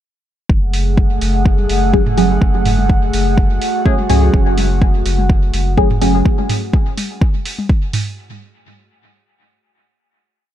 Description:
dub techno; 125 BPM; 4/4; swing 55% on 16ths; F# minor; A4 = 437 Hz
airy breathy pad; sustained chords; 0.5-6.2 s; A3 to F#5; -21 LUFS; right 1 dB; chorus, sidechain pumping
warm sub bass; bass; 0.5-6.2 s; F#1 to C#2; -17 LUFS; equal; sidechain pumping
electronic kick drum; drums; 0.5-7.8 s; -14 LUFS; equal
electronic hi-hat; drums; 0.7-8.0 s; -28 LUFS; right 2 dB; dub echo
electronic toms; percussion; 1.0-8.0 s; -24 LUFS; right 1 dB; sidechain pumping on toms, dub echo
deep mellow chord stab; stabs; 1.9-6.5 s; F#3 to G#4; -19 LUFS; equal; chorus, phaser, sidechain pumping, dub echo
light reverb; echo-heavy mix; -12 LUFS; side -11 dB against mid
0.5-8.2 groove
0.5 F#madd9

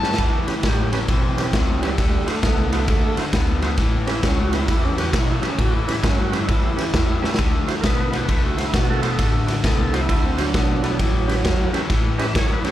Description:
electric blues shuffle; 133 BPM; 4/4; swing 65% on 8ths; A4 = 440 Hz
overdriven tonewheel organ; accompaniment; 0.0-12.7 s; F#3 to E5; -26 LUFS; right 6 dB; slow rotary speaker, slapback echo
crunchy overdriven guitar; riff; 0.0-12.7 s; A2 to B3; -26 LUFS; left 5 dB; slapback echo
upright bass; bass; 0.0-12.7 s; A1 to B2; -25 LUFS; equal
raw garage drum kit; drums; 0.0-12.7 s; kick drum, ride cymbal, snare drum; -21 LUFS; equal
little or no reverb; live gig heard through the venue's PA, club reverb; -18 LUFS; side -13 dB against mid
0.2-12.7 A section
drum fill 0.0, 7.2
0.2 A9; 2.0 D9; 3.8 A9; 7.4 D9; 11.0 A9

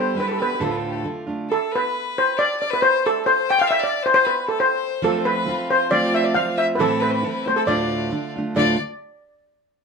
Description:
celtic folk, Celtic polka; 136 BPM; 2/4; swing 53% on 8ths; D dorian; A4 = 440 Hz
steel pan; melody; 0.0-8.8 s; A4 to G5; -19 LUFS; equal; plate reverb
rich fiddle; second line; 0.0-8.8 s; G4 to G5; -26 LUFS; left 8 dB
picked steel-string acoustic guitar; accompaniment; 0.0-1.5, 5.0-8.8 s; D2 to G4; -23 LUFS; right 2 dB
wet studio ambience, RT60 0.5 s; -18 LUFS; side -5 dB against mid
0.0-1.5 A section; 1.5-8.6 B section
0.0 G; 0.6 Dm; 1.5 N.C.; 5.0 F; 6.8 Am; 7.7 Dm

